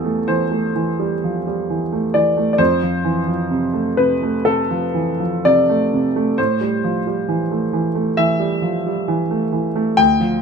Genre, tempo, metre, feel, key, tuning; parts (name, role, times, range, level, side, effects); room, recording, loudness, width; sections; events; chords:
neoclassical minimalist piano; 66 BPM; 4/4; rubato; A minor; A4 = 443 Hz
clear concert grand piano; solo; 0.0-10.4 s; D2 to G5; -16 LUFS; right 1 dB
moderate studio reverb, RT60 0.8 s; minimal, uncompressed stereo recording; -16 LUFS; side -6 dB against mid
0.0-10.4 A section
0.0 Am7/E; 2.6 Fmaj7; 6.4 Am7